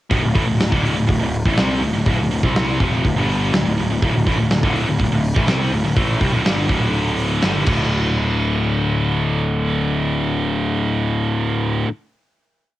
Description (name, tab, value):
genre	hard rock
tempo	123 BPM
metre	4/4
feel	straight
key	unclear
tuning	A4 = 440 Hz
part	distorted electric guitar	riff	0.1-11.9 s	D2 to C4	-23 LUFS	left 5 dB	distortion, cassette tape
part	high-gain distorted guitar	riff	0.1-11.9 s	D2 to C4	-23 LUFS	right 6 dB	distortion, cassette tape
part	fuzz picked electric bass	bass	0.1-11.8 s	D1 to C2	-21 LUFS	equal	overdrive
part	big rock drum kit	drums	0.1-7.8 s	crash cymbal, hi-hat, kick drum, snare drum	-20 LUFS	equal	cassette tape
room	little or no reverb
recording	home recording on cassette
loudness	-16 LUFS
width	side -15 dB against mid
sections	0.1-7.9 riff; 7.9-11.8 final hit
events	drum fill 7.7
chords	0.1 D5